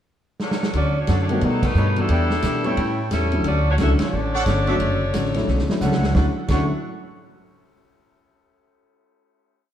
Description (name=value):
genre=jazz, big band swing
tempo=177 BPM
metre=4/4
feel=swing 62% on 8ths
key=D major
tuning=A4 = 438 Hz
part: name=clear saxophone section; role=melody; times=0.4-5.8 s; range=F#3 to E5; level=-25 LUFS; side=left 1 dB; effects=none
part: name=swinging big-band drum kit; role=drums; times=0.4-6.6 s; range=crash cymbal, hi-hat, kick drum, ride cymbal, snare drum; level=-27 LUFS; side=right 1 dB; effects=none
part: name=hollow-body jazz guitar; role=accompaniment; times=0.7-6.7 s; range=A2 to G4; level=-28 LUFS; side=left 3 dB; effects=none
part: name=upright bass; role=bass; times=0.7-6.7 s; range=F#1 to B2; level=-22 LUFS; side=equal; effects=none
part: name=clear trumpet section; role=stabs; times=1.1-6.6 s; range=D4 to G5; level=-29 LUFS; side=right 2 dB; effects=none
part: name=dark baby grand piano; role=accompaniment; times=1.3-6.7 s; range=D3 to F#4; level=-26 LUFS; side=left 1 dB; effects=none
room=moderate echo chamber reverb, RT60 1.6 s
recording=heard from further back in the room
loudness=-18 LUFS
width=side -10 dB against mid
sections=0.0-0.7 pickup bar; 0.7-6.2 A section; 6.2-7.5 final chord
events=drum fill 0.4-0.7, 5.5-6.2; band accent 1.6, 4.0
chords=0.0 Dmaj7; 1.4 B7b13; 2.1 Em7; 2.8 A7; 3.4 Dmaj7